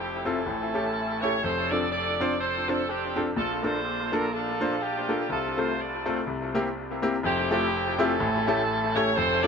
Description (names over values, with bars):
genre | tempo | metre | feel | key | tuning
gospel | 124 BPM | 4/4 | swing 57% on 8ths | F major | A4 = 442 Hz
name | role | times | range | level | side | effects
edgy saxophone section | melody | 0.0-9.5 s | C4 to D5 | -27 LUFS | right 1 dB | analog delay
bright concert grand piano | accompaniment | 0.0-9.5 s | F1 to C5 | -27 LUFS | left 1 dB | analog delay
room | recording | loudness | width
moderate plate reverb, RT60 3.0 s | echo-heavy mix | -24 LUFS | side -6 dB against mid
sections
0.0-7.2 A section; 7.2-9.5 B section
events
none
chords
0.5 A7; 1.4 Dm7/F; 3.4 Bbmaj7; 5.3 F/C; 6.3 C7; 7.2 Fmaj7; 8.2 A7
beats
0.46 0.95 | 1.43 1.91 2.40 2.88 | 3.37 3.85 4.33 4.82 | 5.30 5.79 6.27 6.75 | 7.24 7.72 8.21 8.69 | 9.17